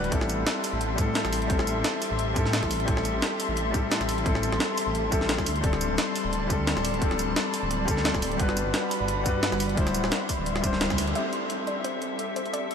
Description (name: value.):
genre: liquid drum and bass.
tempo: 174 BPM.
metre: 4/4.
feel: swing 54% on 16ths.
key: A dorian.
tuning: A4 = 439 Hz.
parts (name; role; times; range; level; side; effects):
warm concert grand piano; accompaniment; 0.0-12.7 s; G3 to C5; -30 LUFS; left 2 dB; vintage 12-bit sampler grit, low-pass filter, tape echo.
glassy FM pad; sustained chords; 0.0-12.7 s; G3 to C6; -31 LUFS; left 1 dB; ensemble chorus, built-in reverb, sidechain pumping.
dark detuned saw bass; bass; 0.0-11.1 s; D1 to A2; -30 LUFS; equal; none.
jungle sampler-style drum kit; drums; 0.0-12.7 s; hi-hat, snare drum, tambourine; -30 LUFS; equal; small room reverb.
electronic kick drum; drums; 0.1-11.0 s; none; -28 LUFS; equal; overdrive, small room reverb.
soft round pluck; melody; 11.2-12.7 s; C5 to E5; -34 LUFS; right 1 dB; chorus, analog delay.
room: moderate huge ambient reverb, RT60 8.0 s.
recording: dreamy mix soaked in reverb.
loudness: -24 LUFS.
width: side -7 dB against mid.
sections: 0.0-11.2 A section; 11.2-12.7 B section.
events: band accent 10.8.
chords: 0.1 Am7; 5.5 D7sus4; 8.4 Gmaj7; 9.8 D9sus4; 11.2 Am7.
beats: | 0.12 0.47 0.81 1.15 | 1.50 1.84 2.19 2.53 | 2.88 3.22 3.57 3.91 | 4.26 4.60 4.95 5.29 | 5.64 5.98 6.33 6.67 | 7.02 7.36 7.71 8.05 | 8.40 8.74 9.09 9.43 | 9.78 10.12 10.46 10.81 | 11.15 11.50 11.84 12.19 | 12.53.